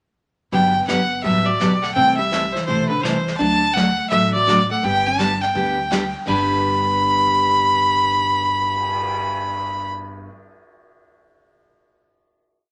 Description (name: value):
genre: country, western swing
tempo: 167 BPM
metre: 4/4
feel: swing 64% on 8ths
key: G major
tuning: A4 = 440 Hz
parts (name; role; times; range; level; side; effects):
- clear fiddle; melody; 0.5-9.9 s; B4 to B5; -20 LUFS; equal; none
- hollow-body jazz guitar; second line; 0.5-10.3 s; D3 to D4; -29 LUFS; equal; none
- picked steel-string acoustic guitar; accompaniment; 0.5-10.3 s; G2 to A4; -26 LUFS; equal; none
- upright bass; bass; 0.5-10.3 s; G1 to D2; -33 LUFS; equal; none
- vintage brush drum kit; drums; 0.5-9.1 s; brushed snare drum, crash cymbal, cymbal swell, hi-hat, kick drum, snare drum; -34 LUFS; equal; none
room: wet studio reverb, RT60 0.7 s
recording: none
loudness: -19 LUFS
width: mono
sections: 0.5-6.3 A section; 6.3-9.1 final chord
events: none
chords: 0.5 Gmaj7; 2.0 C6; 3.4 D; 4.8 G